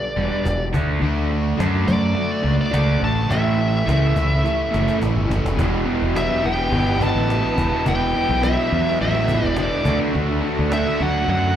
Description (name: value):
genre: classic rock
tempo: 105 BPM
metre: 4/4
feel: straight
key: E dorian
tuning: A4 = 440 Hz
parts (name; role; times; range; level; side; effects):
- bluesy overdriven lead guitar; melody; 0.0-11.6 s; D5 to A5; -24 LUFS; left 1 dB; distortion, slapback echo
- raw garage guitar; riff; 0.0-11.6 s; E2 to D4; -24 LUFS; right 2 dB; overdrive, spring reverb, slapback echo
- growling fingered electric bass; bass; 0.2-11.6 s; E1 to F#2; -21 LUFS; equal; overdrive
- cajon; drums; 0.2-11.5 s; none; -29 LUFS; equal; none
- distorted electric guitar; riff; 1.0-11.6 s; A2 to G4; -28 LUFS; equal; distortion, slapback echo
- string machine, full ensemble; sustained chords; 5.6-11.6 s; F#4 to G5; -32 LUFS; equal; none
- octave-fuzz lead guitar; second line; 6.2-11.6 s; D3 to B3; -28 LUFS; right 2 dB; distortion, slapback echo
room: little or no reverb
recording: live gig heard through the venue's PA, club reverb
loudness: -17 LUFS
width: side -10 dB against mid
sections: 0.0-5.6 A section; 5.6-11.6 B section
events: drum fill 4.4-5.6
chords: 0.0 G5; 0.7 D; 3.3 A; 5.6 Emadd9; 9.9 D